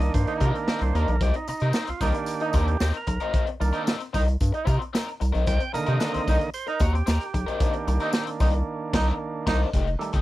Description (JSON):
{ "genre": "funk", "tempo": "113 BPM", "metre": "4/4", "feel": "straight", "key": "C minor", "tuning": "A4 = 440 Hz", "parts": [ { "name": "raw garage guitar", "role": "accompaniment", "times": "0.0-10.2 s", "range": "C4 to Bb4", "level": "-31 LUFS", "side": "left 5 dB", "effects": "wah, overdrive" }, { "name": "overdriven tonewheel organ", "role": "stabs", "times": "0.0-10.2 s", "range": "D3 to G5", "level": "-29 LUFS", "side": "right 4 dB", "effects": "none" }, { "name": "round analog bass", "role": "bass", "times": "0.0-10.2 s", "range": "F1 to C3", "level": "-23 LUFS", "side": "equal", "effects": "none" }, { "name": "raw garage drum kit", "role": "drums", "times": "0.0-10.2 s", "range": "crash cymbal, hi-hat, kick drum, snare drum", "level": "-26 LUFS", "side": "equal", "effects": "none" }, { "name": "bright trombone", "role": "second line", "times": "0.3-9.6 s", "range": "Eb4", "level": "-29 LUFS", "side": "right 4 dB", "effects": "none" }, { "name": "tambourine", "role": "percussion", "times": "1.5-8.5 s", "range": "none", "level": "-44 LUFS", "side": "left 5 dB", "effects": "none" } ], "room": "little or no reverb", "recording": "dry, close 1970s-style studio recording", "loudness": "-22 LUFS", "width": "side -16 dB against mid", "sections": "0.0-9.7 A section", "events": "tonewheel organ solo 0.0-9.7; band accent 8.7-9.7", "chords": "0.0 Cm7" }